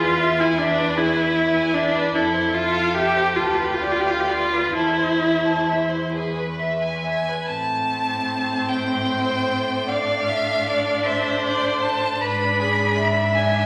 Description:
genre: classical, slow romantic movement for string quartet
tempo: 43-53 BPM (dotted quarters)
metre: 6/8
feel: rubato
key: A minor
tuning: A4 = 438 Hz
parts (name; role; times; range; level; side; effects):
- clear violin; melody; 0.0-13.7 s; A4 to B5; -29 LUFS; equal; none
- clear violin; second line; 0.0-13.7 s; G#4 to A5; -26 LUFS; equal; none
- rich viola; accompaniment; 0.0-13.7 s; C4 to G4; -24 LUFS; equal; none
- rich cello; bass; 0.0-13.7 s; D2 to A2; -31 LUFS; equal; none
room: wet recital hall reverb, RT60 1.6 s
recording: vinyl crackle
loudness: -21 LUFS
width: mono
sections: 0.0-7.5 A section; 7.5-13.7 B section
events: none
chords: 0.0 E; 2.1 Fmaj7; 3.4 Bdim/D; 4.8 Am/E; 7.5 Am; 9.9 Dm/A; 12.2 E7/G#

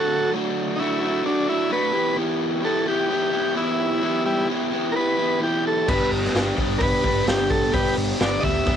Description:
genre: garage rock duo or trio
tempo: 130 BPM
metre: 4/4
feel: straight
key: E minor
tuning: A4 = 440 Hz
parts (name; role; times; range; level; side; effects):
- combo organ; melody; 0.0-8.8 s; G3 to E5; -23 LUFS; equal; cassette tape
- overdriven electric guitar; riff; 0.0-8.8 s; D3 to G4; -22 LUFS; equal; cassette tape
- hollow-body short-scale picked electric bass; bass; 5.9-8.8 s; G1 to D2; -29 LUFS; equal; none
- raw garage drum kit; drums; 5.9-8.8 s; crash cymbal, hi-hat, kick drum, snare drum; -24 LUFS; equal; cassette tape
room: little or no reverb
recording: home recording on cassette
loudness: -20 LUFS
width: side -8 dB against mid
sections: 0.0-8.8 A section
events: none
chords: 0.0 D; 1.9 Em; 5.9 G

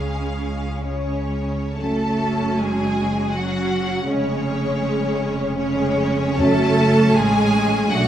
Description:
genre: classical, slow romantic movement for symphony orchestra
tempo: 61-81 BPM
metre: 3/4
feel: rubato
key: F# minor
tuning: A4 = 442 Hz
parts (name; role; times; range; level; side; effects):
- clear studio violin section; melody; 0.0-8.1 s; C#5 to A5; -27 LUFS; left 3 dB; none
- rich studio violin section; second line; 0.0-8.1 s; C#4 to A4; -26 LUFS; equal; none
- rich studio viola section; accompaniment; 0.0-8.1 s; F#3 to D4; -26 LUFS; right 2 dB; none
- rich studio cello section; bass; 0.0-8.1 s; C#3 to A3; -23 LUFS; right 1 dB; none
- rich studio double bass section; bass; 0.0-8.1 s; E#1 to C#2; -26 LUFS; right 1 dB; none
- dark French horn section; sustained chords; 1.8-8.1 s; F#3 to D4; -24 LUFS; left 1 dB; none
- timpani; percussion; 6.4-7.5 s; F#2; -29 LUFS; equal; none
room: wet recital hall reverb, RT60 1.6 s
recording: small room ambience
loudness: -18 LUFS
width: side -10 dB against mid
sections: 0.0-1.8 A section; 1.8-8.1 B section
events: none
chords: 0.0 C#; 1.8 F#m; 4.1 C#/E#; 6.4 F#m

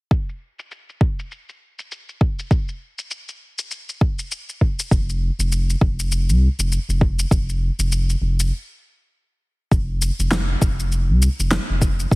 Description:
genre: organic downtempo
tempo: 100 BPM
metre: 4/4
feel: swing 59% on 16ths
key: unclear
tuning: A4 = 440 Hz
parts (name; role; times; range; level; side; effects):
- electronic kick drum; drums; 0.1-12.2 s; none; -18 LUFS; equal; none
- electronic shaker and snare drum; drums; 0.1-12.2 s; none; -26 LUFS; left 1 dB; low-pass filter on perc, low-pass filter on snare
- warm sub bass; bass; 4.9-12.2 s; F1 to C2; -19 LUFS; equal; sidechain pumping
room: little or no reverb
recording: heavily compressed radio sound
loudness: -18 LUFS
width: side -24 dB against mid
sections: 0.1-9.7 A section; 9.7-12.2 B section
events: stop 8.5-9.7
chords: none

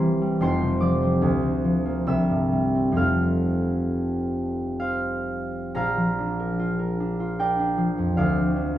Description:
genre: classical, solo harp piece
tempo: 59-78 BPM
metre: 3/4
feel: rubato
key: F major, Bb major from 5.8 s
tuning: A4 = 441 Hz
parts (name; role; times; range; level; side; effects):
- concert harp; solo; 0.0-8.8 s; E1 to F6; -21 LUFS; equal; none
room: wet recital hall reverb, RT60 1.4 s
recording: none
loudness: -21 LUFS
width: side -12 dB against mid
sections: 0.0-5.8 A section; 5.8-8.8 B section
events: none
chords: 0.4 F5; 1.2 Bb/D; 2.1 C7; 3.0 F; 5.8 Bb; 8.2 Bb/D

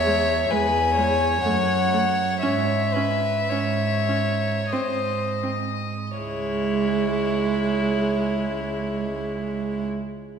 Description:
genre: classical, slow romantic movement for string quartet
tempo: 39-65 BPM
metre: 3/4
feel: rubato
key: C# minor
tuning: A4 = 439 Hz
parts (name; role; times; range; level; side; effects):
- warm violin; melody; 0.0-9.8 s; C#5 to G#5; -26 LUFS; left 4 dB; none
- rich violin; second line; 0.0-9.8 s; E4 to C#5; -27 LUFS; left 1 dB; none
- warm cello; bass; 0.0-9.8 s; C#2 to G#2; -27 LUFS; right 4 dB; none
- warm viola; accompaniment; 0.1-9.9 s; G#3 to C#4; -27 LUFS; right 4 dB; none
room: wet scoring stage reverb, RT60 1.9 s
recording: minimal, uncompressed stereo recording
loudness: -21 LUFS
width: side -7 dB against mid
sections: 0.0-6.2 A section; 6.2-10.4 B section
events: slowing down 0.0-6.2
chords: 0.0 E; 1.4 F#m; 2.4 C#m/G#; 4.7 G#; 6.2 C#m

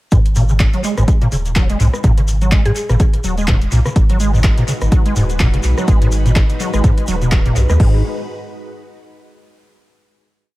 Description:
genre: acid house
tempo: 125 BPM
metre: 4/4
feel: swing 57% on 16ths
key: G# minor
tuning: A4 = 440 Hz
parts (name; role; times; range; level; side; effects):
- acid bass, square; riff; 0.1-8.0 s; F#2 to G#3; -18 LUFS; equal; overdrive, ensemble chorus, analog delay
- warm sub bass; bass; 0.1-8.0 s; D#1 to D#2; -17 LUFS; equal; sidechain pumping
- booming analog drum machine; drums; 0.1-7.9 s; crash cymbal, handclaps, hi-hat, rim click; -25 LUFS; equal; overdrive, analog delay
- electronic kick drum; drums; 0.1-7.9 s; none; -13 LUFS; equal; none
- shekere; percussion; 0.1-7.8 s; none; -32 LUFS; left 1 dB; analog delay
- mallet-like synth pluck; melody; 2.7-3.3 s; G#4; -26 LUFS; left 1 dB; chorus, cassette tape, analog delay
- string machine, full ensemble; sustained chords; 4.0-8.0 s; G#3 to B4; -26 LUFS; equal; ensemble chorus, sidechain pumping
room: little or no reverb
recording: echo-heavy mix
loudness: -12 LUFS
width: side -18 dB against mid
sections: 0.1-7.8 groove; 7.8-9.7 final chord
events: none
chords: 0.1 G#m7

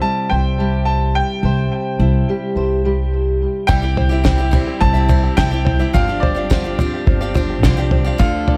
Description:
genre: indie folk with a building arrangement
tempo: 106 BPM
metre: 4/4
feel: straight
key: unclear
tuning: A4 = 441 Hz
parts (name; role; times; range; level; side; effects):
- bright upright piano; melody; 0.0-8.6 s; D5 to A5; -25 LUFS; equal; tape echo
- fingerpicked steel-string acoustic guitar; accompaniment; 0.0-3.7 s; C3 to C5; -24 LUFS; equal; tape echo
- upright bass; bass; 0.3-8.6 s; G1 to D2; -20 LUFS; equal; none
- picked steel-string acoustic guitar; accompaniment; 3.7-8.6 s; G2 to A4; -26 LUFS; equal; none
- warm symphonic string section; sustained chords; 3.7-8.6 s; D3 to A4; -31 LUFS; equal; none
- open-back banjo; arpeggios; 3.7-8.6 s; E4 to F5; -30 LUFS; equal; tape echo
- cloth-damped thuddy drum kit; drums; 3.7-8.6 s; kick drum, snare drum, toms; -19 LUFS; equal; none
room: light reverb, small room ambience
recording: echo-heavy mix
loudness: -17 LUFS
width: mono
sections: 0.0-3.7 A section; 3.7-8.6 B section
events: none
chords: 0.0 C; 6.0 G7sus4

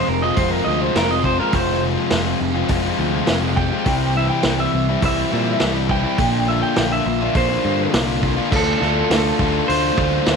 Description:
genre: indie rock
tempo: 103 BPM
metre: 4/4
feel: straight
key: unclear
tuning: A4 = 442 Hz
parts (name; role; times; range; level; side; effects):
- electric guitar through a small old amp; melody; 0.0-10.4 s; A4 to G5; -22 LUFS; right 3 dB; slapback echo
- overdriven electric guitar; riff; 0.0-10.4 s; F2 to F4; -21 LUFS; left 13 dB; none
- thick fuzz guitar; riff; 0.0-10.4 s; F2 to G4; -25 LUFS; right 14 dB; distortion, lush chorus, slapback echo
- growling picked electric bass; bass; 0.1-10.4 s; F1 to Bb2; -24 LUFS; right 2 dB; overdrive
- vintage drum kit; drums; 0.4-10.4 s; crash cymbal, hi-hat, kick drum, snare drum; -23 LUFS; right 1 dB; none
room: light reverb, small room reverb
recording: 1960s-style stereo with parts hard left and right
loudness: -16 LUFS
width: side -5 dB against mid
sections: 0.0-8.5 A section; 8.5-10.4 B section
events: clean electric guitar solo 0.0-8.5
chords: 0.0 Fmadd9; 3.9 C; 6.2 Bbadd9; 8.5 Dm7

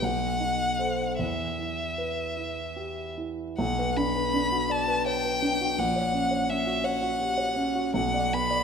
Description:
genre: classical, romantic duo for violin and grand piano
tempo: 48-57 BPM (dotted quarters)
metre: 6/8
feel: rubato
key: E minor, B minor from 3.6 s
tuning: A4 = 438 Hz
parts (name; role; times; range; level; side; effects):
- rich violin; melody; 0.0-8.6 s; E5 to B5; -28 LUFS; left 2 dB; none
- warm concert grand piano; accompaniment; 0.0-8.6 s; A#1 to D5; -28 LUFS; right 1 dB; none
room: moderate scoring stage reverb, RT60 1.6 s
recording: none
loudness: -25 LUFS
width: side -6 dB against mid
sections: 0.0-3.6 A section; 3.6-8.6 B section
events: none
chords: 0.0 B7b9; 1.2 Em; 3.6 Bm; 5.8 F#/A#; 8.0 Bm

